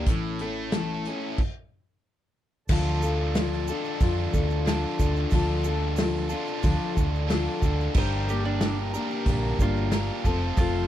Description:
folk rock and heartland rock; 91 BPM; 4/4; straight; D minor; A4 = 440 Hz
picked steel-string acoustic guitar; accompaniment; 0.0-10.9 s; G2 to Bb4; -31 LUFS; left 5 dB
biting overdriven guitar; riff; 0.0-10.9 s; A2 to Bb4; -31 LUFS; equal
hollow-body short-scale fingered electric bass; bass; 0.0-10.9 s; F1 to F2; -28 LUFS; right 1 dB
natural country drum kit; drums; 0.1-10.7 s; crash cymbal, hi-hat, kick drum, snare drum; -26 LUFS; equal
pedal harmonium; sustained chords; 2.7-10.9 s; F4 to Bb5; -38 LUFS; right 3 dB; stereo widening
tube shaker; percussion; 2.7-10.7 s; -47 LUFS; right 19 dB
mandolin; second line; 8.0-10.9 s; D4 to C5; -34 LUFS; right 2 dB
little or no reverb; -23 LUFS; side -12 dB against mid
0.0-2.7 A section; 2.7-10.9 B section
stop 1.4-2.7
0.1 A; 1.4 N.C.; 2.7 Dm; 8.0 Gm; 10.2 F

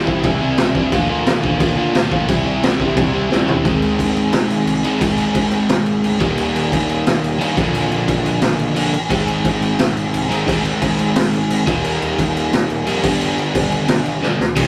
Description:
punk rock; 176 BPM; 4/4; straight; A4 = 442 Hz
crunchy overdriven guitar; riff; 0.0-14.7 s; G2 to F4; -20 LUFS; equal
fuzz picked electric bass; bass; 0.0-14.7 s; G1 to A2; -30 LUFS; equal; overdrive
raw garage drum kit; drums; 0.1-14.6 s; crash cymbal, kick drum, snare drum, toms; -21 LUFS; equal
light reverb; rough rehearsal-room recording; -17 LUFS; mono
0.0-3.6 A section; 3.6-14.6 B section
drum fill 3.3-3.6, 14.2-14.6; half time 3.6-14.6
0.0 C; 0.9 Bb/D; 2.3 C; 3.6 Ab; 6.2 Eb; 7.6 Bb; 9.1 Ab; 11.7 Eb; 13.0 G

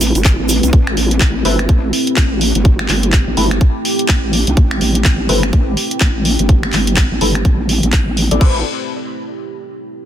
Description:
bass house; 125 BPM; 4/4; swing 59% on 16ths; A minor; A4 = 439 Hz
deep dark ambient pad; sustained chords; 0.0-8.6 s; A3 to B4; -21 LUFS; right 1 dB; chorus, built-in reverb, sidechain pumping
vowel-sweep wobble bass; bass; 0.0-8.6 s; G1 to C2; -16 LUFS; equal; chorus, tube saturation, sidechain pumping
garage drum kit; drums; 0.0-8.5 s; crash cymbal, finger snaps, handclaps, hi-hat; -19 LUFS; equal
tube shaker; percussion; 0.0-0.7 s; -23 LUFS; right 7 dB
electronic kick drum; drums; 0.2-8.5 s; -11 LUFS; equal
band-passed chord stab; stabs; 1.4-8.6 s; C4 to D5; -22 LUFS; left 3 dB; phaser, analog chorus, sidechain pumping, ping-pong delay
digital ambience; dense, heavily limited modern master; -12 LUFS; side -10 dB against mid
0.0-8.4 A section; 8.4-10.1 B section
filter sweep on wobble bass 0.0-8.4; filter sweep on synth stab 0.0-8.4
0.0 Amadd9

